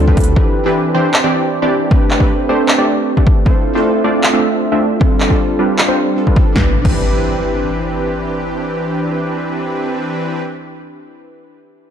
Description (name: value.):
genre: future bass.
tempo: 155 BPM.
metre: 4/4.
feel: half-time.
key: C major.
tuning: A4 = 439 Hz.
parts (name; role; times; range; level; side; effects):
glassy digital keys; accompaniment; 0.0-11.9 s; C4 to E5; -21 LUFS; right 1 dB; chorus, sidechain pumping, tape echo.
supersaw stab; riff; 0.0-10.4 s; E3 to E5; -16 LUFS; right 1 dB; cassette tape, sidechain pumping, low-pass filter, tape echo.
electronic kick drum; drums; 0.1-7.0 s; none; -13 LUFS; equal; overdrive.
big-room dance drum kit; drums; 0.2-7.0 s; crash cymbal, handclaps, hi-hat, snare drum; -18 LUFS; equal; overdrive.
impact; sound effects; 6.6-10.8 s; none; -20 LUFS; left 1 dB; none.
room: light reverb.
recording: dark, warm production.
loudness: -12 LUFS.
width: side -8 dB against mid.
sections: 0.0-6.6 A section; 6.6-9.7 B section.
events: filter sweep on supersaw synth 0.0-6.6.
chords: 0.4 Cmaj9; 1.9 Am11; 3.5 Dm7; 5.0 G9sus4; 6.6 Cmaj9.